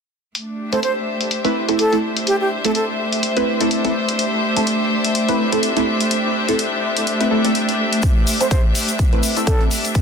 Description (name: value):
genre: bass house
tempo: 125 BPM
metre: 4/4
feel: swing 57% on 16ths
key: A minor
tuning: A4 = 440 Hz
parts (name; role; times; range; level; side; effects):
- electronic hi-hat; drums; 0.3-10.0 s; none; -24 LUFS; left 2 dB; low-pass filter on hats
- warm chamber string section; texture; 0.4-10.0 s; A3 to E5; -20 LUFS; left 1 dB; sidechain pumping
- breathy concert flute; melody; 0.7-2.8, 8.4-9.6 s; G4 to C5; -23 LUFS; right 1 dB; dub echo
- band-passed chord stab; stabs; 0.7-9.7 s; A3 to B4; -22 LUFS; right 1 dB; phaser, lush chorus, cassette tape, sidechain pumping, dub echo
- electronic kick drum; drums; 8.0-10.0 s; none; -16 LUFS; equal; none
- tube shaker; percussion; 8.0-10.0 s; none; -27 LUFS; equal; none
room: moderate lush hall reverb, RT60 1.9 s, studio reverb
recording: dense, heavily limited modern master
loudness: -16 LUFS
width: side -6 dB against mid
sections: 0.4-10.0 A section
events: none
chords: 0.4 Am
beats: | 0.35 0.83 1.31 1.79 | 2.27 2.75 3.23 3.71 | 4.19 4.67 5.15 5.63 | 6.11 6.59 7.07 7.55 | 8.03 8.51 8.99 9.47 | 9.95